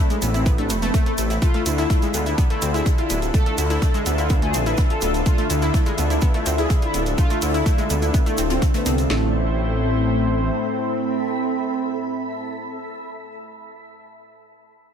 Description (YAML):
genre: melodic techno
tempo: 125 BPM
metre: 4/4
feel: straight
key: A minor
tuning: A4 = 439 Hz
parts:
  - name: mellow synth brass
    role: melody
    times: 0.0-12.8 s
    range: A3 to B4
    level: -27 LUFS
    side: right 1 dB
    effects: chorus, phaser, sidechain pumping, tape echo
  - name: lush unison pad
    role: sustained chords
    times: 0.0-12.8 s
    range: A2 to C5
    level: -28 LUFS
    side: left 1 dB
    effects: chorus, sidechain pumping
  - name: analog pluck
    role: arpeggios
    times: 0.0-9.3 s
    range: G#3 to A4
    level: -27 LUFS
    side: left 1 dB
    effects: chorus, sidechain pumping, ping-pong delay
  - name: granular cloud pad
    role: texture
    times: 0.0-12.9 s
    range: D4 to B5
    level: -30 LUFS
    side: left 1 dB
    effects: built-in reverb, lush chorus, sidechain pumping
  - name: electronic hi-hat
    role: drums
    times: 0.1-9.1 s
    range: none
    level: -33 LUFS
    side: right 2 dB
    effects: overdrive, sidechain pumping on hats
  - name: egg shaker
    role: percussion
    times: 0.1-9.1 s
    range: none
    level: -34 LUFS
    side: right 5 dB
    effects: none
  - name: dark detuned saw bass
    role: bass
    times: 0.2-10.5 s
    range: D1 to D2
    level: -23 LUFS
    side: equal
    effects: tube saturation, sidechain pumping
  - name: natural country drum kit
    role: drums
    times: 0.2-9.0 s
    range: hi-hat, snare drum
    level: -38 LUFS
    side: left 3 dB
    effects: none
  - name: house drum kit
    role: drums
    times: 0.5-9.2 s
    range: kick drum, snare drum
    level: -19 LUFS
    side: equal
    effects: none
room: moderate lush hall reverb, RT60 1.8 s, small room reverb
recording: dreamy mix soaked in reverb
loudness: -18 LUFS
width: side -8 dB against mid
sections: 0.0-9.1 A section; 9.1-12.9 B section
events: drop 0.0-9.1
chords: 0.0 Am; 1.4 Dm; 9.1 Am